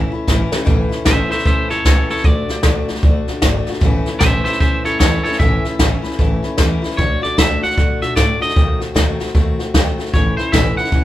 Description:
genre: rockabilly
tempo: 152 BPM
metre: 4/4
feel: swing 63% on 8ths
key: A major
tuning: A4 = 440 Hz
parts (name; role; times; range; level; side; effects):
- twangy electric guitar; melody; 0.0-11.0 s; A4 to F#5; -20 LUFS; equal; none
- picked steel-string acoustic guitar; accompaniment; 0.0-11.0 s; A2 to F#4; -22 LUFS; left 3 dB; none
- upright bass; bass; 0.0-11.0 s; G#1 to B2; -21 LUFS; equal; none
- jazz brush drum kit; drums; 0.3-11.0 s; hi-hat, kick drum, snare drum; -16 LUFS; equal; none
room: light reverb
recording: band playing live in one room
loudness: -13 LUFS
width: side -14 dB against mid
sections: 0.7-11.0 A section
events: drum fill 0.0-0.7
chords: 0.0 A; 2.2 D; 3.8 A; 7.0 D; 8.6 D#dim7; 10.1 A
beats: 0.28 | 0.67 1.07 1.46 1.85 | 2.25 2.64 3.04 3.43 | 3.83 4.22 4.62 5.01 | 5.41 5.80 6.19 6.59 | 6.98 7.38 7.77 8.17 | 8.56 8.96 9.35 9.75 | 10.14 10.54 10.93

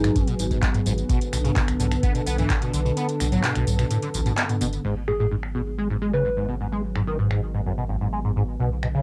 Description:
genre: acid house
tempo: 128 BPM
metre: 4/4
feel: straight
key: G# phrygian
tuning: A4 = 440 Hz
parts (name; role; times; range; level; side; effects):
- soft struck synth lead; melody; 0.0-0.3, 5.1-6.5 s; D#4 to B4; -31 LUFS; equal; chorus, cassette tape, tape echo
- lush unison pad; sustained chords; 0.0-9.0 s; D3 to A4; -32 LUFS; equal; chorus, sidechain pumping, cassette tape
- liquid acid bass; riff; 0.0-9.0 s; G#1 to B3; -28 LUFS; equal; phaser, overdrive, ensemble chorus, sidechain pumping, cassette tape, tape echo
- saturated sub bass; bass; 0.0-9.0 s; F#1 to B1; -30 LUFS; equal; tube saturation, sidechain pumping
- booming analog drum machine; drums; 0.0-8.9 s; crash cymbal, finger snaps, handclaps, hi-hat, tambourine, toms; -30 LUFS; equal; overdrive, low-pass filter on snare, low-pass filter on hats, low-pass filter on perc, low-pass filter on toms, low-pass filter on cymbals, low-pass filter on room
- electronic kick drum; drums; 0.2-2.6 s; none; -25 LUFS; equal; overdrive
room: moderate booth ambience, RT60 0.2 s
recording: home recording on cassette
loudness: -24 LUFS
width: mono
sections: 0.0-4.8 A section; 4.8-9.0 B section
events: kick drops out 3.0-4.8; band accent 4.4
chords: 0.0 G#m7; 1.1 Bm7; 4.8 G#m7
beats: 0.16 0.63 | 1.09 1.56 2.03 2.50 | 2.97 3.44 3.91 4.38 | 4.84 5.31 5.78 6.25 | 6.72 7.19 7.66 8.13 | 8.60

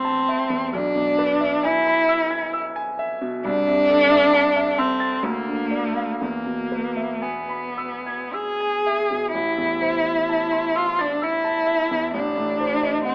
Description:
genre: classical, romantic duo for cello and grand piano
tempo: 52-69 BPM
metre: 3/4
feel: rubato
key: A minor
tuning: A4 = 441 Hz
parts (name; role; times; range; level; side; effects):
- rich cello; melody; 0.0-13.1 s; Bb3 to G#4; -20 LUFS; equal; none
- clear concert grand piano; accompaniment; 0.0-13.1 s; A1 to A6; -26 LUFS; equal; none
room: moderate large studio reverb, RT60 1.5 s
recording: AM radio sound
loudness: -19 LUFS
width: side -30 dB against mid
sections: 0.0-13.1 A section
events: none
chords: 0.0 Am; 0.7 E7/B; 3.5 Am/C; 5.2 Bb/D; 6.2 E; 9.3 Am; 12.1 Adim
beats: | 0.75 1.66 2.56 | 3.46 4.34 5.24 | 6.21 7.22 8.34 | 9.35 10.29 11.22 | 12.15 13.07

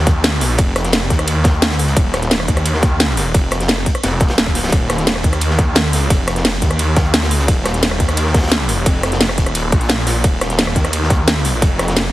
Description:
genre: dark technical drum and bass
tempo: 174 BPM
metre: 4/4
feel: straight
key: unclear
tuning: A4 = 439 Hz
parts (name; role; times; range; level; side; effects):
- snarling distorted saw bass; bass; 0.0-12.1 s; Eb1 to Eb2; -17 LUFS; equal; distortion, overdrive, sidechain pumping
- crunchy breakbeat drum kit; drums; 0.1-12.1 s; hi-hat, snare drum; -26 LUFS; equal; high-pass filter on hats, high-pass filter on snare, high-pass filter on room
- drum and bass drum kit; drums; 0.1-12.0 s; hi-hat, ride cymbal, rim click, snare drum; -18 LUFS; equal; none
- electronic kick drum; drums; 0.1-11.7 s; none; -15 LUFS; equal; none
room: little or no reverb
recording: heavily compressed radio sound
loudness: -13 LUFS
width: side -16 dB against mid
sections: 0.0-12.1 A section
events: none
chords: none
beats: 0.24 | 0.59 0.93 1.27 1.62 | 1.97 2.31 2.65 3.00 | 3.34 3.69 4.03 4.38 | 4.72 5.07 5.41 5.76 | 6.10 6.45 6.79 7.14 | 7.48 7.83 8.17 8.52 | 8.86 9.21 9.55 9.90 | 10.24 10.59 10.93 11.28 | 11.62 11.96

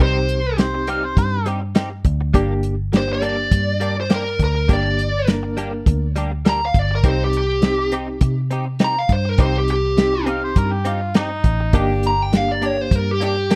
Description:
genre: straight-eighth soul blues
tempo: 102 BPM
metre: 4/4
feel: swing 53% on 16ths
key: G minor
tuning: A4 = 440 Hz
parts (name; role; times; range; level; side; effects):
- smooth overdriven lead guitar; melody; 0.0-13.6 s; G4 to Bb5; -24 LUFS; equal; digital delay
- barky reed electric piano; accompaniment; 0.0-13.1 s; Bb3 to Bb4; -27 LUFS; equal; overdrive, fast tremolo
- direct-recorded clean electric guitar; stabs; 0.0-13.6 s; G3 to G4; -29 LUFS; equal; analog chorus
- vintage muted fingered electric bass; bass; 0.0-13.6 s; G1 to C3; -24 LUFS; equal; none
- warm soul drum kit; drums; 0.0-13.6 s; hi-hat, kick drum, snare drum; -19 LUFS; equal; none
- overdriven harmonica; second line; 0.6-1.5, 10.3-11.9 s; Eb4 to F5; -27 LUFS; equal; none
- bright horn section; sustained chords; 11.7-12.3 s; Bb3 to G4; -30 LUFS; equal; none
room: little or no reverb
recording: none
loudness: -19 LUFS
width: mono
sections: 0.0-13.6 A section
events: none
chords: 0.0 Cm; 2.3 Gm; 7.0 Cm; 11.7 Gm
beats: | 0.00 0.58 1.17 1.76 | 2.34 2.93 3.52 4.10 | 4.69 5.28 5.87 6.45 | 7.04 7.63 8.22 8.80 | 9.39 9.98 10.57 11.15 | 11.74 12.33 12.92 13.51

